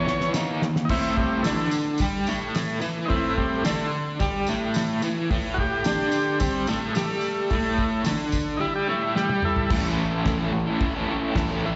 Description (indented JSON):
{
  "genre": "garage rock duo or trio",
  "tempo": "109 BPM",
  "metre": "4/4",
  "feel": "straight",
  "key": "A mixolydian",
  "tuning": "A4 = 445 Hz",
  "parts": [
    { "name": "overdriven combo organ", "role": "melody", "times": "0.0-9.7 s", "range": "E3 to C#5", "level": "-29 LUFS", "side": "equal", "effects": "slapback echo" },
    { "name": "crunchy overdriven guitar", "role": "riff", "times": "0.0-11.8 s", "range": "A2 to A4", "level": "-27 LUFS", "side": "equal", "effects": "tremolo, slapback echo" },
    { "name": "cloth-damped thuddy drum kit", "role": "drums", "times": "0.1-11.5 s", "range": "crash cymbal, hi-hat, kick drum, snare drum, toms", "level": "-31 LUFS", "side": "equal", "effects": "none" },
    { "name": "tambourine", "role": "percussion", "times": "0.3-8.5 s", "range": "none", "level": "-42 LUFS", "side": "equal", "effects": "none" }
  ],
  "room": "light reverb, small room ambience",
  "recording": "live gig heard through the venue's PA, recital hall reverb, nothing above 7.8 kHz",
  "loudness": "-25 LUFS",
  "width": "mono",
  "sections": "0.9-9.7 A section; 9.7-11.8 B section",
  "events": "drum fill 0.0-0.9, 9.2-9.7",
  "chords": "0.3 D#5; 0.9 A5; 9.7 A",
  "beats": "0.35 | 0.90 1.45 2.00 2.55 | 3.10 3.65 4.20 4.75 | 5.30 5.85 6.40 6.95 | 7.50 8.05 8.60 9.15 | 9.70 10.25 10.80 11.35"
}